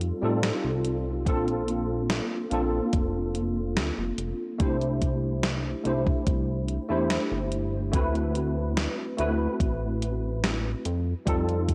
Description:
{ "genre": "vaporwave", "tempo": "72 BPM", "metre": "4/4", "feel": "straight", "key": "C mixolydian", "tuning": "A4 = 440 Hz", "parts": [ { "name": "tine electric piano", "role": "accompaniment", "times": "0.0-11.7 s", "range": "G3 to C5", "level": "-31 LUFS", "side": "equal", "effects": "overdrive, ensemble chorus, analog delay" }, { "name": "chorused synth bass", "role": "bass", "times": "0.0-11.7 s", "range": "F1 to A2", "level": "-32 LUFS", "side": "equal", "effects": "none" }, { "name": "gated 80s digital drum machine", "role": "drums", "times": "0.0-11.7 s", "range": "hi-hat, snare drum", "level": "-33 LUFS", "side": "equal", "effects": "gated reverb, gated reverb snare, vintage 12-bit sampler grit" }, { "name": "electronic kick drum", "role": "drums", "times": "1.3-11.7 s", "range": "none", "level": "-28 LUFS", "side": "equal", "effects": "vintage 12-bit sampler grit" } ], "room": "light reverb", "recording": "dry, gritty hardware recording", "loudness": "-27 LUFS", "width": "mono", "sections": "0.0-11.7 A section", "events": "none", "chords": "0.0 F9; 1.3 Bbmaj9; 4.6 C6; 7.9 D13; 10.9 F9", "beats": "0.44 | 1.27 2.10 2.94 3.77 | 4.60 5.44 6.27 7.10 | 7.94 8.77 9.60 10.44 | 11.27" }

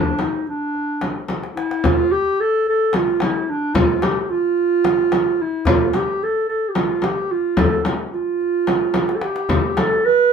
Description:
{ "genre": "Turkish makam ensemble", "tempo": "219 BPM (eighths)", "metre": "7/8", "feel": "straight", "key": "unclear", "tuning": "A4 = 440 Hz", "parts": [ { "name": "dark clarinet", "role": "melody", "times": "0.0-10.3 s", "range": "D4 to B4-22c", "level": "-18 LUFS", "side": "right 2 dB", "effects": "none" }, { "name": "darbuka", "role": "percussion", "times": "0.2-10.1 s", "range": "none", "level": "-26 LUFS", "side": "left 3 dB", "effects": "none" }, { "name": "frame drum", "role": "percussion", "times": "0.2-9.9 s", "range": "none", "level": "-21 LUFS", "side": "left 2 dB", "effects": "none" } ], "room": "moderate studio reverb, RT60 0.5 s", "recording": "band playing live in one room", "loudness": "-17 LUFS", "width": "side -6 dB against mid", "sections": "0.0-1.8 A section; 1.8-10.3 B section", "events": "drum fill 1.3-1.8, 9.0-9.5", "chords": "none", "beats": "0.20 0.47 0.75 1.02 1.29 1.57 | 1.84 2.12 2.39 2.66 2.94 3.21 3.48 | 3.76 4.03 4.31 4.58 4.85 5.13 5.40 | 5.67 5.95 6.22 6.50 6.77 7.04 7.32 | 7.59 7.87 8.14 8.41 8.69 8.96 9.23 | 9.51 9.78 10.06" }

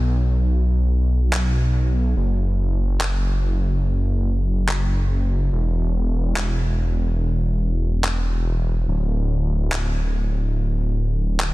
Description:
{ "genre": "future bass", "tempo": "143 BPM", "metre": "4/4", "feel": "half-time", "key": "unclear", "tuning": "A4 = 440 Hz", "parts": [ { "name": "wide detuned saw bass", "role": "bass", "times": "0.0-11.5 s", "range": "D1 to B1", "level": "-19 LUFS", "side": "equal", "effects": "chorus" }, { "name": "electronic handclaps", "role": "drums", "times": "1.3-11.5 s", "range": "none", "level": "-28 LUFS", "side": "equal", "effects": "studio ambience, soft clipping on snare" } ], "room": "little or no reverb", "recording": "dense, heavily limited modern master", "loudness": "-19 LUFS", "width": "side -19 dB against mid", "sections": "0.0-11.5 A section", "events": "none", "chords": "none", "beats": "0.07 | 0.49 0.91 1.33 1.75 | 2.17 2.59 3.01 3.43 | 3.85 4.26 4.68 5.10 | 5.52 5.94 6.36 6.78 | 7.20 7.62 8.04 8.46 | 8.88 9.30 9.72 10.14 | 10.56 10.98 11.40" }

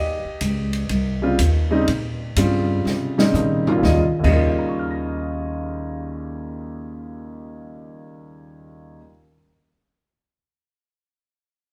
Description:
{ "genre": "jazz piano trio", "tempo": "123 BPM", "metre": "4/4", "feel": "swing 66% on 8ths", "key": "Eb mixolydian", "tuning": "A4 = 440 Hz", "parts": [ { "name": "warm grand piano", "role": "melody", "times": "0.0-9.5 s", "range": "Eb2 to Bb6", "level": "-25 LUFS", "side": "equal", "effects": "none" }, { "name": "upright bass", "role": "bass", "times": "0.0-9.0 s", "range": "C2 to C3", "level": "-26 LUFS", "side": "equal", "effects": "none" }, { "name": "open jazz drum kit", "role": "drums", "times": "0.4-4.3 s", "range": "crash cymbal, hi-hat, kick drum, ride cymbal, snare drum, toms", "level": "-28 LUFS", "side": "equal", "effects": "none" } ], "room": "wet large studio reverb, RT60 1.2 s", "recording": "band playing live in one room", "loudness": "-21 LUFS", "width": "mono", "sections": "0.0-3.8 A section; 3.8-7.7 B section", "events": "drum fill 2.9-3.8", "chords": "0.0 Eb13; 3.8 Eb9", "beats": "0.41 0.90 1.39 | 1.88 2.37 2.86 3.35 | 3.84 4.32 4.81 5.30 | 5.79 6.28 6.76 7.25" }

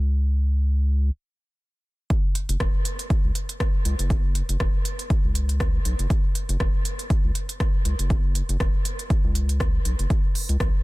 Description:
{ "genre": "dub techno", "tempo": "120 BPM", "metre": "4/4", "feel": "swing 56% on 16ths", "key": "unclear", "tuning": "A4 = 440 Hz", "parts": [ { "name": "round analog bass", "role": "bass", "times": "0.0-10.7 s", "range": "E1 to C#2", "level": "-22 LUFS", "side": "equal", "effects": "sidechain pumping" }, { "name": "deep house drum kit", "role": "drums", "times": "2.1-10.7 s", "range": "hi-hat, rim click", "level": "-32 LUFS", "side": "equal", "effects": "soft clipping on snare" }, { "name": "electronic kick drum", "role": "drums", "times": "2.1-10.7 s", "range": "none", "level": "-23 LUFS", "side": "equal", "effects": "none" } ], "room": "little or no reverb", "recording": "dense, heavily limited modern master", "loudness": "-21 LUFS", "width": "side -21 dB against mid", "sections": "0.0-2.1 A section; 2.1-10.8 B section", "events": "filter sweep 0.0-2.1; stop 1.1-2.1", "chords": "none", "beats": "| 0.10 0.60 1.10 1.60 | 2.10 2.60 3.10 3.60 | 4.10 4.60 5.10 5.60 | 6.10 6.60 7.10 7.60 | 8.10 8.60 9.10 9.60 | 10.10 10.60" }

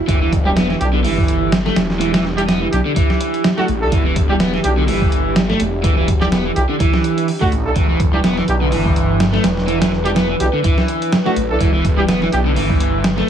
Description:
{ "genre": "breakbeat, breaks", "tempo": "125 BPM", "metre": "4/4", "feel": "swing 56% on 16ths", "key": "E minor", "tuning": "A4 = 442 Hz", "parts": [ { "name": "dark analog pad", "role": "sustained chords", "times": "0.0-13.3 s", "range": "D4 to B4", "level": "-26 LUFS", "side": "left 1 dB", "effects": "chorus, vintage 12-bit sampler grit, sidechain pumping" }, { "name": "crunchy overdriven guitar", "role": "riff", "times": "0.1-13.3 s", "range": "D3 to B3", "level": "-19 LUFS", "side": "right 1 dB", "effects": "tape echo" }, { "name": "phased detuned saw bass", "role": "bass", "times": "0.1-13.2 s", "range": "E1 to B1", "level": "-20 LUFS", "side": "equal", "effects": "phaser, tube saturation" }, { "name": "dusty soul sampler-style drum kit", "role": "drums", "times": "0.1-13.3 s", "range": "hi-hat, kick drum, snare drum", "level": "-17 LUFS", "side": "equal", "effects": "none" }, { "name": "mellow brass ensemble", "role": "stabs", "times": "0.5-12.4 s", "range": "D4 to A4", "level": "-23 LUFS", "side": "right 3 dB", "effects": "vintage 12-bit sampler grit, tape echo" } ], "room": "moderate small room reverb, RT60 0.5 s", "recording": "heavily compressed radio sound, multiband compression", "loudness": "-14 LUFS", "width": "side -9 dB against mid", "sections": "0.0-13.3 A section", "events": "none", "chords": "0.0 Em7", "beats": "| 0.08 0.56 1.04 1.52 | 2.00 2.48 2.96 3.44 | 3.92 4.40 4.88 5.36 | 5.84 6.32 6.80 7.28 | 7.76 8.24 8.72 9.20 | 9.68 10.16 10.64 11.12 | 11.60 12.08 12.56 13.04" }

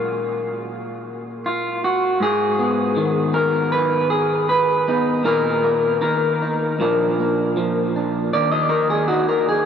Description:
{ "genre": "folk, solo fingerstyle acoustic guitar", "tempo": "79 BPM", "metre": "4/4", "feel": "straight", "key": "unclear", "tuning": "A4 = 440 Hz", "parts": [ { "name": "electric guitar through a small old amp", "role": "solo", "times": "0.0-9.7 s", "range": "Eb2 to Eb5", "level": "-17 LUFS", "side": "equal", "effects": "diffuse ambient delay" } ], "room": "wet huge ambient reverb, RT60 8.5 s", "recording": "dreamy mix soaked in reverb", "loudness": "-17 LUFS", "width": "side -8 dB against mid", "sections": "0.0-9.7 A section", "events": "none", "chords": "0.0 N.C.; 2.2 Abm; 5.3 Bbsus4; 6.8 Bb; 8.3 N.C.", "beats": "0.68 1.44 | 2.20 2.96 3.73 4.49 | 5.26 6.02 6.79 7.56 | 8.34 9.11" }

